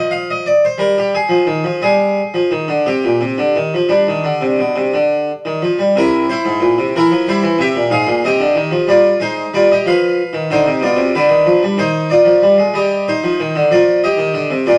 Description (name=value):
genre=classical, baroque-style suite movement for harpsichord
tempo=57-63 BPM (dotted quarters)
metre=12/8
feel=rubato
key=C minor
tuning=A4 = 445 Hz
part: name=harpsichord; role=solo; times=0.0-14.8 s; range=Ab2 to F5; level=-14 LUFS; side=equal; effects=none
room=wet studio reverb, RT60 0.8 s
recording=none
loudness=-14 LUFS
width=mono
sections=0.0-5.9 A section; 5.9-14.8 B section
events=none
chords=0.0 Fm; 1.8 Gsus4; 3.9 G5; 5.9 C7; 7.9 Fm/Ab; 9.8 G7 (rootless); 11.8 Cm/Eb; 13.7 Dm